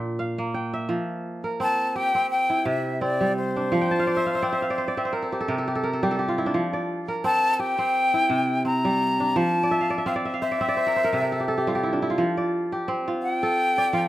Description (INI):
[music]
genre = west african traditional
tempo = 85 BPM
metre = 4/4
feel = swing 55% on 16ths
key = F major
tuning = A4 = 437 Hz
[part]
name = kora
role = arpeggios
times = 0.0-14.1 s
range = Bb2 to A5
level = -24 LUFS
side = right 1 dB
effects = plate reverb
[part]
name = breathy bright jazz flute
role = melody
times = 1.6-14.1 s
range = C5 to Bb5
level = -23 LUFS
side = left 1 dB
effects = plate reverb
[sound]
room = moderate studio reverb, RT60 0.6 s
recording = rough home demo mix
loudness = -22 LUFS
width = side -14 dB against mid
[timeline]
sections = 0.9-12.2 A section; 12.2-14.1 B section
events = kora fill 3.8-6.5, 9.6-12.2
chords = 0.0 Bb; 0.9 F5; 2.3 C; 3.7 F5; 5.1 C5; 6.5 F5; 8.0 C; 9.4 F; 10.8 C; 12.2 F